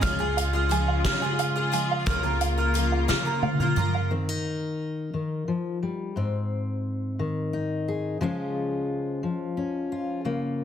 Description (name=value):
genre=indie folk with a building arrangement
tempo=59 BPM (dotted quarters)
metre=6/8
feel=straight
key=unclear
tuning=A4 = 440 Hz
part: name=picked twelve-string acoustic guitar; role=accompaniment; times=0.0-4.1 s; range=Db3 to Bb4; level=-30 LUFS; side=left 6 dB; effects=analog chorus
part: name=warm chamber string section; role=sustained chords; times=0.0-4.1 s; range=Db3 to F4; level=-33 LUFS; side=equal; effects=none
part: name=clear upright piano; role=arpeggios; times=0.0-4.1 s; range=F5 to F6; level=-28 LUFS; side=right 7 dB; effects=none
part: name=upright bass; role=bass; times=0.0-4.1 s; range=Db2 to Db3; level=-28 LUFS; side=equal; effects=none
part: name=soft-mallet drum kit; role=drums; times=0.0-3.9 s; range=hi-hat, kick drum, snare drum, toms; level=-28 LUFS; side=equal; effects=none
part: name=fingerpicked steel-string acoustic guitar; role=accompaniment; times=4.1-10.6 s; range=Ab2 to Ab4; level=-27 LUFS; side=left 2 dB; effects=none
room=studio reverb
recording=dense, heavily limited modern master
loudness=-24 LUFS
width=side -9 dB against mid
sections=0.0-4.1 A section; 4.1-10.6 B section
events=drum fill 3.1-4.1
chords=0.0 Db; 2.1 Bbm/Db; 4.1 Eb; 6.2 Ab; 8.2 Db